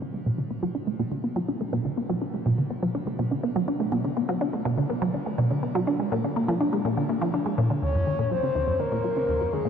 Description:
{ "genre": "ambient, sequencer-driven space music", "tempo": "123 BPM", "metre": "4/4", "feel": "straight", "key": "B dorian", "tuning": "A4 = 440 Hz", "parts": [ { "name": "resonant blip pluck", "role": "riff", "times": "0.0-9.7 s", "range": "Eb2 to D4", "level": "-24 LUFS", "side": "equal", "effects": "phaser, shimmer reverb, ping-pong delay" }, { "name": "breathy flute-like synth lead", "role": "melody", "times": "7.8-9.7 s", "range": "Ab4 to Db5", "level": "-25 LUFS", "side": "left 2 dB", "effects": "wide subtle chorus, shimmer reverb, ping-pong delay" } ], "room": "wet huge ambient reverb, RT60 7.6 s", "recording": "dark, warm production", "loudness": "-24 LUFS", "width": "side -7 dB against mid", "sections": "0.0-7.8 A section; 7.8-9.7 B section", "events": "filter sweep on synth arpeggio sound 0.0-7.8", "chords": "0.0 Bm7; 5.9 A#7; 7.8 Ebm" }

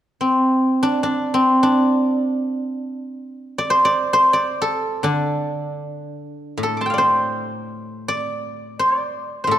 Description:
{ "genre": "chinese traditional, Chinese solo plucked strings", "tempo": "free time", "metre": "none", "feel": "none", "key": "D yu mode", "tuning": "A4 = 440 Hz", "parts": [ { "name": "guzheng", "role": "solo", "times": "0.2-9.6 s", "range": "A2 to D6", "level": "-18 LUFS", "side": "equal", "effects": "none" } ], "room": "moderate concert hall reverb, RT60 2.0 s", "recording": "none", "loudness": "-17 LUFS", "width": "side -12 dB against mid", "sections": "0.0-6.6 A section; 6.6-9.6 B section", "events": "none", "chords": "none" }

